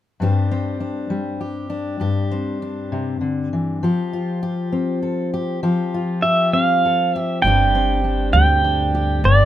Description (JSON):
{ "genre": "acoustic folk duo or small band", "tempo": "66 BPM (dotted quarters)", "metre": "6/8", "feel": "straight", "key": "unclear", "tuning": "A4 = 440 Hz", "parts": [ { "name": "fingerpicked steel-string acoustic guitar", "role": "accompaniment", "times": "0.2-9.5 s", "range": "G2 to A4", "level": "-20 LUFS", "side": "left 2 dB", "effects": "none" }, { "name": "pedal steel guitar", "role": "melody", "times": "6.2-9.5 s", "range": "D5 to G5", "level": "-17 LUFS", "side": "right 3 dB", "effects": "none" }, { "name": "upright bass", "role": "bass", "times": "7.4-9.5 s", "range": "G1 to D2", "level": "-18 LUFS", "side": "right 1 dB", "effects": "none" } ], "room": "little or no reverb", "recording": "minimal, uncompressed stereo recording", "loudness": "-18 LUFS", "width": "side -12 dB against mid", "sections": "0.2-7.4 A section; 7.4-9.5 B section", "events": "none", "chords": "0.2 Gsus4; 3.8 Fsus2; 7.4 Gsus4" }